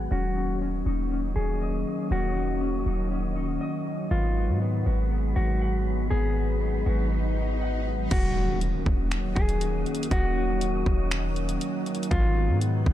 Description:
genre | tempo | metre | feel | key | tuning
hip hop, atmospheric cloud-rap | 120 BPM | 4/4 | half-time | Eb minor | A4 = 444 Hz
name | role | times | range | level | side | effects
warm analog pad | sustained chords | 0.0-12.9 s | Eb3 to Db4 | -31 LUFS | equal | chorus, sidechain pumping, low-pass filter
concert harp | arpeggios | 0.0-10.2 s | Cb4 to Gb5 | -36 LUFS | left 5 dB | low-pass filter, ping-pong delay
warm 808-style bass | bass | 0.0-12.9 s | Eb1 to Ab2 | -26 LUFS | equal | none
wind-like tuned noise texture | texture | 0.0-12.9 s | Gb3 to Gb6 | -39 LUFS | equal | built-in reverb
mellow electric guitar | melody | 0.1-12.6 s | F4 to Ab4 | -33 LUFS | left 2 dB | low-pass filter, ping-pong delay
swell and impact | sound effects | 6.5-10.1 s | none | -35 LUFS | equal | none
trap drum kit | drums | 8.1-12.9 s | crash cymbal, finger snaps, hi-hat, kick drum | -28 LUFS | equal | overdrive
room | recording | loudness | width
little or no reverb | none | -24 LUFS | side -12 dB against mid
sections
0.0-8.1 A section; 8.1-12.9 B section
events
filter sweep 0.0-8.1; swell 6.5-8.1; impact 8.1-10.1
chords
0.1 Ebm7; 4.1 Abm7; 8.1 Ebm7; 12.1 Abm7

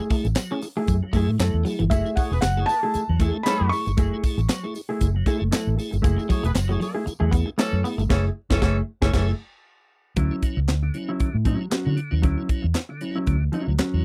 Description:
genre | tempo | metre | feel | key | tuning
funk | 116 BPM | 4/4 | swing 56% on 16ths | F# minor | A4 = 438 Hz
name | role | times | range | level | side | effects
mellow electric guitar | accompaniment | 0.0-14.0 s | F#3 to A4 | -30 LUFS | equal | none
clean electric guitar | riff | 0.0-1.9, 6.2-8.1 s | E3 to C#4 | -31 LUFS | equal | none
tonewheel organ | stabs | 0.0-14.0 s | D3 to G#4 | -34 LUFS | equal | slow rotary speaker
tambourine | percussion | 0.0-8.1 s | none | -46 LUFS | equal | none
tight funk drum kit | drums | 0.1-13.9 s | crash cymbal, handclaps, hi-hat, kick drum, snare drum | -25 LUFS | equal | none
vintage muted fingered electric bass | bass | 0.2-14.0 s | E1 to D3 | -25 LUFS | equal | none
felt-muted upright piano | melody | 1.9-4.7 s | E5 to C#6 | -28 LUFS | equal | none
clear horn section | second line | 2.2-9.3 s | E3 to C#5 | -33 LUFS | equal | none
room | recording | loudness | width
little or no reverb | dry, close 1970s-style studio recording | -23 LUFS | mono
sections
0.0-10.2 A section; 10.2-14.0 B section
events
band accent 8.1-10.2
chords
0.0 F#m9; 10.2 Dmaj9

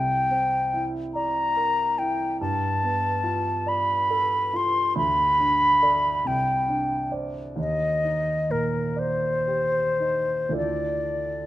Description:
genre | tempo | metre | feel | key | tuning
classical, impressionist duo for flute and grand piano | 35-48 BPM (dotted quarters) | 6/8 | rubato | unclear | A4 = 440 Hz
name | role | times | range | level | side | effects
mellow concert flute | melody | 0.0-11.5 s | Bb4 to C6 | -22 LUFS | left 1 dB | none
warm grand piano | accompaniment | 0.0-11.5 s | C2 to D5 | -29 LUFS | right 2 dB | none
room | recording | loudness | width
moderate recital hall reverb, RT60 1.7 s | close, detailed microphones | -22 LUFS | side -14 dB against mid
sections
0.0-11.5 A section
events
none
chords
0.0 C9; 2.4 G9; 5.0 D5; 6.3 Csus2; 7.6 Ebmaj7; 10.6 Dmadd9

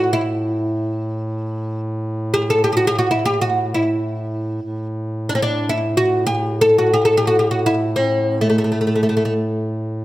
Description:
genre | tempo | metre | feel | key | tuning
Arabic maqam ensemble | free time | none | none | A maqam rast | A4 = 439 Hz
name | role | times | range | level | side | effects
oud | melody | 0.0-9.3 s | A3 to A4 | -17 LUFS | equal | slapback echo
warm duduk | drone | 0.0-10.0 s | A2 | -24 LUFS | equal | none
room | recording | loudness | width
moderate recital hall reverb, RT60 1.6 s | close, detailed microphones | -17 LUFS | side -16 dB against mid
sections
0.0-10.0 A section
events
none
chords
none

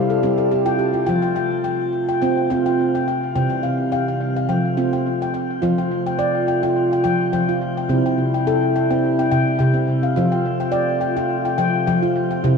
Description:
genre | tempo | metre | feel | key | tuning
world meditative, meditative tuned percussion | 106 BPM | 4/4 | swing 55% on 16ths | F major | A4 = 440 Hz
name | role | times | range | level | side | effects
mellow brass ensemble | sustained chords | 0.0-12.6 s | C3 to F4 | -22 LUFS | equal | stereo widening, shimmer reverb
handpan | arpeggios | 0.0-12.6 s | C3 to G5 | -18 LUFS | equal | tape echo, shimmer reverb
room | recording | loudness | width
wet echo chamber reverb, RT60 1.8 s, studio ambience | dark, warm production, nothing above 10.8 kHz | -17 LUFS | side -5 dB against mid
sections
0.0-5.6 A section; 5.6-12.6 B section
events
handpan fill 0.0-1.1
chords
0.0 C; 1.1 F; 3.4 C; 4.5 F; 7.9 C; 10.2 F

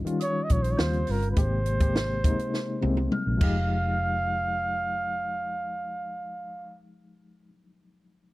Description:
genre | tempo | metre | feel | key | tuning
lush 1970s-style soul | 103 BPM | 4/4 | straight | F minor | A4 = 445 Hz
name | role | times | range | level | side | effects
barky reed electric piano | accompaniment | 0.0-8.3 s | C3 to G4 | -31 LUFS | left 2 dB | overdrive, fast tremolo
vintage muted fingered electric bass | bass | 0.0-7.5 s | F1 to Eb2 | -28 LUFS | equal | none
compact cocktail drum kit | drums | 0.1-3.5 s | crash cymbal, hi-hat, kick drum, snare drum, toms | -27 LUFS | equal | none
breathy flugelhorn | melody | 0.2-6.8 s | Bb4 to F5 | -30 LUFS | right 1 dB | none
large celesta | texture | 0.2-7.5 s | Eb6 to G6 | -42 LUFS | equal | none
room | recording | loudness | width
small room ambience | dry, close 1970s-style studio recording | -24 LUFS | side -18 dB against mid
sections
0.0-3.7 A section; 3.7-6.0 B section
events
drum fill 2.5-3.7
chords
0.0 Eb9; 0.8 Eb13; 1.4 Abmaj9; 3.4 Fm9

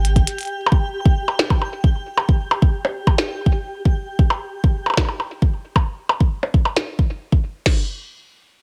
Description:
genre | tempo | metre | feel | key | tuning
IDM | 134 BPM | 4/4 | straight | unclear | A4 = 442 Hz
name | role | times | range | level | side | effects
glitchy drum kit | drums | 0.0-6.9 s | hi-hat, percussion blips, snare drum | -22 LUFS | equal | none
twinkling granular texture | texture | 0.0-4.1 s | G4 to G5 | -33 LUFS | equal | built-in reverb
glitchy drum kit | drums | 0.2-7.8 s | crash cymbal, kick drum, snare drum | -18 LUFS | equal | none
room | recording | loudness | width
little or no reverb | none | -20 LUFS | mono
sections
0.0-7.7 A section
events
none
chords
none

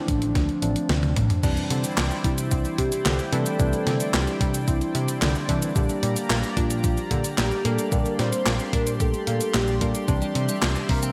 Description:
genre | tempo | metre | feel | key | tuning
synthwave | 111 BPM | 4/4 | straight | unclear | A4 = 438 Hz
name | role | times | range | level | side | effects
warm velvety synth lead | melody | 0.0-11.1 s | D4 to C5 | -32 LUFS | equal | chorus, tremolo, vintage 12-bit sampler grit, digital delay
chorused pulse-width pad | sustained chords | 0.0-11.1 s | D3 to C6 | -36 LUFS | equal | sidechain pumping
mellow tine electric piano | stabs | 0.0-11.1 s | E3 to G4 | -32 LUFS | equal | digital delay
hollow-body short-scale picked electric bass | bass | 0.1-11.1 s | A1 to C3 | -29 LUFS | equal | tube saturation
clean 12-bit digital drum machine | drums | 0.1-11.1 s | crash cymbal, handclaps, hi-hat, shaker, snare drum, toms | -30 LUFS | equal | studio reverb, gated reverb
electronic kick drum | drums | 0.1-11.0 s | none | -28 LUFS | equal | studio reverb
analog pluck | arpeggios | 1.4-10.1 s | C3 to Bb4 | -34 LUFS | equal | chorus, digital delay
clean electric guitar | riff | 10.1-11.1 s | C3 to C4 | -36 LUFS | equal | subtle chorus, digital delay
room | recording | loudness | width
moderate lush hall reverb, RT60 1.9 s | bright 1980s-style digital production | -24 LUFS | mono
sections
0.0-1.4 A section; 1.4-11.1 B section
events
drum fill 0.9-1.4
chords
0.0 Dm7; 1.4 Cadd9; 5.8 Gm/Bb; 10.1 Cadd9

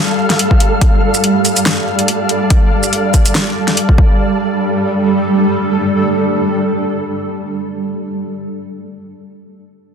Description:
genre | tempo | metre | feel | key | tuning
deep dubstep | 142 BPM | 4/4 | swing 55% on 16ths, half-time | unclear | A4 = 440 Hz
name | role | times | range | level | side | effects
granular cloud pad | sustained chords | 0.0-7.6 s | G3 to D5 | -16 LUFS | right 1 dB | built-in reverb
flickering grainy texture | texture | 0.0-4.2 s | A4 to F5 | -20 LUFS | equal | built-in reverb
deep house drum kit | drums | 0.3-3.9 s | hi-hat, shaker, snare drum | -15 LUFS | equal | overdrive
electronic kick drum | drums | 0.5-4.1 s | none | -11 LUFS | equal | overdrive
room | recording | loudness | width
moderate digital room reverb, RT60 0.9 s | dense, heavily limited modern master | -12 LUFS | side -7 dB against mid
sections
0.0-4.2 A section; 4.2-7.6 B section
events
none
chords
0.0 G5

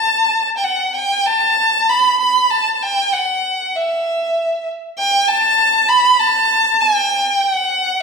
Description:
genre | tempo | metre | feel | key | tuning
indian classical | 97 BPM | 4/4 | straight | unclear | A4 = 445 Hz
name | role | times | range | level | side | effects
rich violin | solo | 0.0-8.0 s | E5 to B5 | -13 LUFS | right 1 dB | slapback echo
room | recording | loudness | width
wet recital hall reverb, RT60 1.5 s | none | -13 LUFS | side -5 dB against mid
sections
0.0-3.7 A section; 3.7-8.0 B section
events
none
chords
none

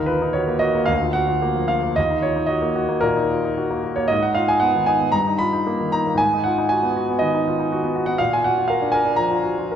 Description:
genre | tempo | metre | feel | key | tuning
classical, romantic character piece for solo piano | 109-123 BPM | 4/4 | rubato | Eb minor | A4 = 443 Hz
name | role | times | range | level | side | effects
clear concert grand piano | solo | 0.0-9.8 s | D2 to Cb6 | -18 LUFS | equal | none
room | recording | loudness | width
wet concert hall reverb, RT60 2.0 s | minimal, uncompressed stereo recording | -18 LUFS | side -8 dB against mid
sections
0.0-9.8 A section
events
none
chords
0.0 Ebm; 0.9 Bb/D; 2.0 Ebm; 4.1 Abm; 5.1 Eb/G; 6.2 Abm7; 8.2 Bb

